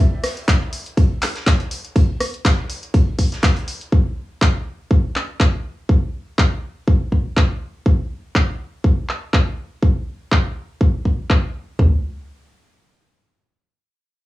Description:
piano house; 122 BPM; 4/4; swing 55% on 16ths
big rock drum kit; drums; 0.2-3.8 s; hi-hat, snare drum; -33 LUFS; right 2 dB; sidechain pumping on hats, high-pass filter on hats, small room ambience, cassette tape, high-pass filter on snare, high-pass filter on room
punchy analog drum machine; drums; 0.2-11.4 s; handclaps, hi-hat, rim click; -22 LUFS; equal; overdrive, low-pass filter on hats, small room ambience, cassette tape, low-pass filter on snare
house drum kit; drums; 0.5-11.9 s; kick drum, toms; -16 LUFS; equal; small room ambience, cassette tape
little or no reverb; home recording on cassette, small room ambience; -17 LUFS; side -17 dB against mid
0.0-11.8 A section; 11.8-14.3 B section

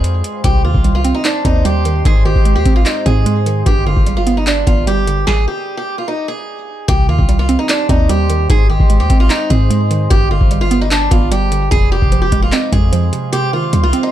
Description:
hip hop, trap; 149 BPM; 4/4; half-time; C harmonic minor; A4 = 440 Hz
picked acoustic archtop guitar; melody; 0.0-14.1 s; D4 to Ab4; -19 LUFS; right 1 dB; tape echo
deep dark ambient pad; sustained chords; 0.0-14.1 s; Ab3 to C6; -26 LUFS; equal; chorus, built-in reverb
warm 808-style bass; bass; 0.0-13.9 s; F1 to Ab2; -15 LUFS; equal
booming analog drum machine; drums; 0.0-14.0 s; handclaps, hi-hat, kick drum, snare drum; -14 LUFS; equal
hollow square pluck; accompaniment; 0.4-14.1 s; F2 to Eb4; -19 LUFS; right 5 dB; chorus
digital ambience; dark, warm production; -11 LUFS; side -12 dB against mid
0.0-6.9 A section; 6.9-14.1 B section
stop 5.3-6.9; kick muted 13.3-13.7
0.4 Cm; 2.1 Ab; 3.7 G; 5.3 N.C.; 6.9 Cm; 8.5 Ab; 10.1 G; 11.7 Fm; 13.3 Cm

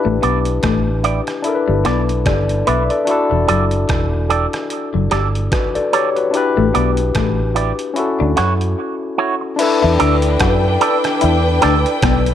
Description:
lovers rock reggae; 74 BPM; 4/4; swing 57% on 16ths; E dorian; A4 = 440 Hz
barky tine electric piano; accompaniment; 0.0-12.3 s; C#4 to E5; -19 LUFS; left 4 dB; overdrive
electric guitar through a small old amp; riff; 0.0-12.3 s; E3 to F#4; -22 LUFS; left 9 dB
vintage muted fingered electric bass; bass; 0.1-12.3 s; E1 to F#2; -18 LUFS; right 1 dB
electric guitar with an envelope filter; stabs; 0.2-11.8 s; E4 to D5; -21 LUFS; right 6 dB; wide subtle chorus, dub echo
trip hop sampler-style drum kit; drums; 0.2-12.3 s; crash cymbal, hi-hat, kick drum, rim click; -22 LUFS; right 1 dB
warm studio string section; second line; 9.6-12.3 s; D4 to G5; -18 LUFS; left 1 dB; dub echo
moderate spring reverb, RT60 2.3 s; -14 LUFS; side -10 dB against mid
0.0-9.6 A section; 9.6-12.3 B section
break 8.8-9.6
0.0 A7sus4; 1.4 G6; 3.1 Em11; 6.3 A7sus4; 8.0 Dmaj9; 9.6 Em11

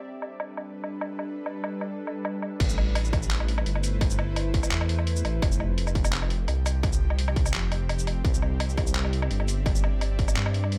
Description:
half-time drum and bass; 170 BPM; 4/4; half-time; A minor; A4 = 441 Hz
bowed-like drone; sustained chords; 0.0-10.8 s; F3 to G5; -38 LUFS; equal; built-in reverb, sidechain pumping
boom bap sampler-style drum kit; drums; 0.2-10.8 s; crash cymbal, handclaps, hi-hat, shaker, woodblock; -34 LUFS; equal; low-pass filter on perc, small room ambience, low-pass filter on hats, low-pass filter on cymbals, low-pass filter on snare
dark detuned saw bass; bass; 2.6-10.8 s; F1 to G2; -28 LUFS; equal
electronic kick drum; drums; 2.6-10.3 s; -29 LUFS; equal; distortion, small room ambience
little or no reverb; -27 LUFS; mono
0.0-2.6 A section; 2.6-10.8 B section
drop 2.6-10.8
0.0 Gadd9; 2.6 Am; 5.4 Fsus2; 8.2 C

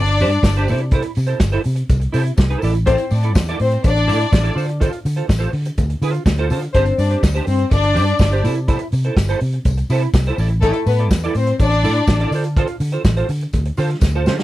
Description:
disco; 124 BPM; 4/4; straight; D minor; A4 = 441 Hz
warm studio violin section; second line; 0.0-12.3 s; A3 to D5; -19 LUFS; left 3 dB
vintage muted fingered electric bass; bass; 0.0-14.4 s; G1 to D3; -18 LUFS; equal
semi-hollow electric guitar; accompaniment; 0.1-14.4 s; D4 to D5; -23 LUFS; right 4 dB; ensemble chorus
warm soul drum kit; drums; 0.1-14.4 s; hi-hat, kick drum, snare drum; -18 LUFS; equal
tambourine; percussion; 0.2-14.4 s; -40 LUFS; left 11 dB
little or no reverb; -15 LUFS; side -15 dB against mid
0.0-14.4 A section
drum fill 14.0-14.4
0.0 Gsus4; 0.7 C6; 2.6 Asus4; 4.6 Dm7; 6.7 Gsus4; 8.4 C6; 10.4 Asus4; 12.3 Dm7

